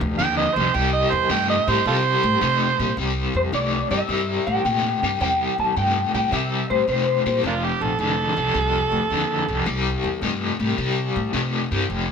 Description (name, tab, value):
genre	electric blues shuffle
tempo	108 BPM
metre	4/4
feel	swing 68% on 8ths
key	C mixolydian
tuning	A4 = 436 Hz
part	overdriven semi-hollow guitar	riff	0.0-12.1 s	F2 to A3	-24 LUFS	left 4 dB	tremolo
part	upright bass	bass	0.0-12.1 s	F1 to C3	-26 LUFS	equal	none
part	overdriven harmonica	second line	0.2-2.9, 7.5-9.6 s	Bb3 to G5	-22 LUFS	right 6 dB	none
part	electric guitar through a small old amp	melody	3.4-7.4 s	C5 to A5	-23 LUFS	left 3 dB	ensemble chorus
room	light reverb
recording	none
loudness	-19 LUFS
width	side -6 dB against mid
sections	0.0-3.0 A section; 3.0-12.1 B section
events	harmonica solo 0.0-3.0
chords	0.0 F5; 0.7 C5; 3.0 C; 7.4 F7; 9.7 C5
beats	0.19 | 0.74 1.30 1.86 2.41 | 2.97 3.53 4.09 4.64 | 5.20 5.76 6.32 6.88 | 7.43 7.99 8.55 9.11 | 9.67 10.22 10.78 11.34 | 11.90